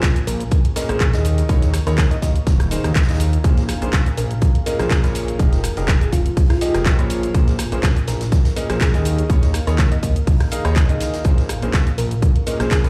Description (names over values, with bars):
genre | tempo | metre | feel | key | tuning
piano house | 123 BPM | 4/4 | swing 54% on 16ths | Bb minor | A4 = 440 Hz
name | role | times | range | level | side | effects
fat analog bass | bass | 0.0-12.9 s | Eb1 to F2 | -23 LUFS | equal | sidechain pumping
electronic kick drum | drums | 0.0-12.8 s | none | -18 LUFS | equal | none
house drum kit | drums | 0.0-12.9 s | handclaps, hi-hat, rim click, shaker | -30 LUFS | equal | none
vintage drum kit | drums | 0.0-12.9 s | hi-hat, snare drum | -40 LUFS | equal | none
deep dark ambient pad | texture | 0.0-12.9 s | Eb4 to Db6 | -35 LUFS | equal | chorus, built-in reverb, sidechain pumping
bell-like FM electric piano | melody | 0.3-12.8 s | F4 to Eb5 | -30 LUFS | equal | chorus, delay
clear grand piano | riff | 0.8-12.9 s | Bb2 to F5 | -29 LUFS | equal | vintage 12-bit sampler grit, sidechain pumping, delay
room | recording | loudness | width
small room reverb | played on a big sound system in a bare room, large studio reverb | -18 LUFS | mono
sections
0.0-12.9 A section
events
none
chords
0.0 Bbm9; 1.2 Eb7sus4; 3.4 Bbm9; 5.4 Fm11; 7.1 Bbm9; 9.1 Eb7sus4; 11.2 Bbm9